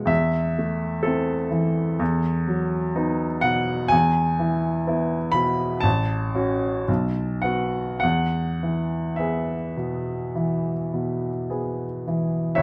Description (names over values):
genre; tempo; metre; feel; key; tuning
classical, romantic nocturne for solo piano; 50-65 BPM; 4/4; rubato; E major; A4 = 439 Hz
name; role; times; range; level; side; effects
clear baby grand piano; solo; 0.0-12.6 s; A1 to B5; -24 LUFS; equal; none
room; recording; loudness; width
moderate studio reverb, RT60 0.8 s; none; -24 LUFS; mono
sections
0.0-12.6 A section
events
none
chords
0.1 Am/E; 2.0 B7/E; 3.9 E; 5.8 F#m/A; 6.9 B5; 8.0 E